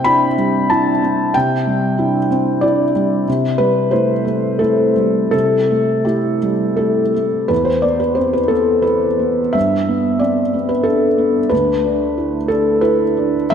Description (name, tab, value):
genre	neoclassical minimalist piano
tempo	81-94 BPM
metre	3/4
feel	rubato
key	E minor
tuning	A4 = 440 Hz
part	felt-muted upright piano	solo	0.0-13.5 s	D2 to B5	-14 LUFS	equal	none
room	wet lush hall reverb, RT60 2.4 s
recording	dreamy mix soaked in reverb, nothing above 10.6 kHz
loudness	-14 LUFS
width	side -7 dB against mid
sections	0.0-7.5 A section; 7.5-13.5 B section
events	none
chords	0.0 Cadd9; 3.3 Am7/C; 7.5 E5; 9.6 Gadd9; 11.5 Dsus2